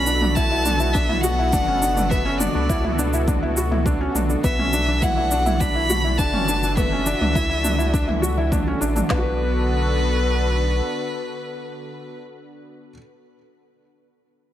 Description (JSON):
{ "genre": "piano and strings electronica", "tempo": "103 BPM", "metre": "4/4", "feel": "straight", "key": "B minor", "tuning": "A4 = 440 Hz", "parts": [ { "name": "rich violin", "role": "melody", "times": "0.0-12.2 s", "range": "B4 to B5", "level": "-25 LUFS", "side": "left 1 dB", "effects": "none" }, { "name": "lush unison pad", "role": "sustained chords", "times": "0.0-12.2 s", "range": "B2 to A4", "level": "-28 LUFS", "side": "left 1 dB", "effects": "chorus, sidechain pumping" }, { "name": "felt-muted upright piano", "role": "riff", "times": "0.0-13.0 s", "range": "B3 to B4", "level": "-26 LUFS", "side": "equal", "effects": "tape echo" }, { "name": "warm sub bass", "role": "bass", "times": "0.0-10.8 s", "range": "F#1 to C#2", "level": "-24 LUFS", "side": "equal", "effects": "sidechain pumping" }, { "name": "electronic shaker and toms", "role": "drums", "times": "0.1-9.1 s", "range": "none", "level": "-27 LUFS", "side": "right 1 dB", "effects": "overdrive" }, { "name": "organic electronic drum kit", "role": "drums", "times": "0.4-9.2 s", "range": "handclaps, kick drum, snare drum", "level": "-23 LUFS", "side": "equal", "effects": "overdrive" } ], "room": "light reverb", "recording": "none", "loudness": "-18 LUFS", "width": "side -12 dB against mid", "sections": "0.0-9.1 A section; 9.1-11.4 B section", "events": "drop 0.0-9.1", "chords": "0.0 Bm7", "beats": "0.36 0.95 1.53 | 2.11 2.69 3.28 3.86 | 4.44 5.02 5.61 6.19 | 6.77 7.35 7.94 8.52 | 9.10 9.69 10.27 10.85" }